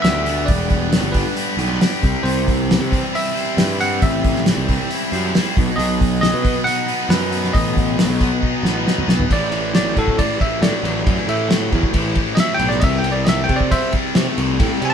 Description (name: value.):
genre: classic rock.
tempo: 136 BPM.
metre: 4/4.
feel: straight.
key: unclear.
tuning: A4 = 440 Hz.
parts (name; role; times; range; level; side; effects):
barky tine electric piano; melody; 0.0-14.9 s; A4 to A5; -23 LUFS; right 1 dB; none.
cranked stack guitar; riff; 0.0-14.9 s; A2 to C5; -23 LUFS; left 7 dB; overdrive.
distorted electric guitar; riff; 0.0-14.9 s; A2 to E4; -25 LUFS; right 6 dB; overdrive.
fuzz picked electric bass; bass; 0.0-14.9 s; E1 to C3; -22 LUFS; right 1 dB; overdrive.
cloth-damped thuddy drum kit; drums; 0.0-14.9 s; hi-hat, kick drum, ride cymbal, snare drum, toms; -20 LUFS; equal; none.
tonewheel organ; sustained chords; 2.2-14.9 s; A3 to E5; -33 LUFS; left 1 dB; none.
room: moderate studio reverb, RT60 0.5 s.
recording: band playing live in one room.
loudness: -15 LUFS.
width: side -7 dB against mid.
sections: 0.0-9.3 A section; 9.3-14.9 B section.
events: drum fill 8.4-9.3; tine electric piano solo 9.3-14.9.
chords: 0.0 Gadd9; 2.0 C; 5.6 B; 9.3 Am7; 12.8 Cadd9.